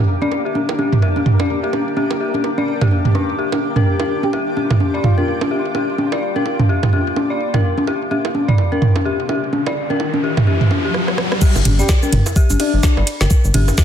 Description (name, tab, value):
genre	minimal techno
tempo	127 BPM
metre	4/4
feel	swing 58% on 16ths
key	G minor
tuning	A4 = 441 Hz
part	granular cloud pad	texture	0.0-10.9 s	D4 to D6	-26 LUFS	left 2 dB	built-in reverb, sidechain pumping
part	pulsing gated texture	texture	0.0-11.0 s	Bb3 to Bb4	-28 LUFS	right 1 dB	chorus, built-in reverb, sidechain pumping
part	dark detuned synth bell	riff	0.2-13.8 s	D4 to D5	-24 LUFS	left 2 dB	chorus, sidechain pumping, low-pass filter, dub echo
part	electronic congas, bongos and toms	percussion	0.2-13.8 s	none	-17 LUFS	right 1 dB	none
part	breathy flute-like synth lead	melody	4.2-5.2, 11.8-13.0 s	D4 to G4	-24 LUFS	left 2 dB	analog chorus, ping-pong delay
part	riser	sound effects	9.1-11.4 s	none	-24 LUFS	left 1 dB	none
part	garage drum kit	drums	10.9-13.8 s	cabasa, crash cymbal, hi-hat, ride cymbal, rim click, snare drum	-22 LUFS	right 1 dB	overdrive
part	electronic kick drum	drums	11.4-13.8 s	none	-13 LUFS	equal	overdrive
part	rubbery square bass	bass	11.6-13.7 s	G1	-16 LUFS	equal	sidechain pumping
room	moderate digital room reverb, RT60 1.0 s, digital ambience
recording	dense, heavily limited modern master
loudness	-14 LUFS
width	side -9 dB against mid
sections	0.0-11.4 A section; 11.4-13.8 B section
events	filter sweep on synth bell 0.0-11.4; riser 9.1-11.4; break 10.9-11.4; drum fill 10.9-11.4; drop 11.4-13.8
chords	0.0 G5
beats	| 0.08 0.55 1.02 1.50 | 1.97 2.44 2.91 3.38 | 3.86 4.33 4.80 5.28 | 5.75 6.22 6.69 7.17 | 7.64 8.11 8.58 9.05 | 9.53 10.00 10.47 10.94 | 11.42 11.89 12.36 12.83 | 13.31 13.78